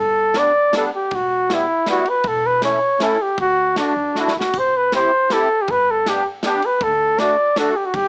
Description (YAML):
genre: alpine folk, alpine dance band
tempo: 159 BPM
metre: 3/4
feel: rubato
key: G major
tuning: A4 = 440 Hz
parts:
  - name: warm flugelhorn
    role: melody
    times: 0.0-8.1 s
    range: D4 to D5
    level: -19 LUFS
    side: equal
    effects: none
  - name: upright bass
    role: bass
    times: 0.0-8.1 s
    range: E1 to E2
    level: -38 LUFS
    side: equal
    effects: none
  - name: musette accordion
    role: accompaniment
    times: 0.3-7.7 s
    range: G3 to G4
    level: -26 LUFS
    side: equal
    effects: cassette tape
  - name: natural country drum kit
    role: drums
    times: 0.3-8.0 s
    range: kick drum, ride cymbal, snare drum, splash cymbal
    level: -31 LUFS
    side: equal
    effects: cassette tape
room: moderate studio reverb, RT60 0.6 s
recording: home recording on cassette, small speaker sound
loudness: -18 LUFS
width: mono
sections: 0.0-8.1 A section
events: drum fill 4.1-4.5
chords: 0.0 Gadd9; 1.1 Em; 2.2 A/E; 3.4 D; 4.5 C; 5.7 G; 6.8 D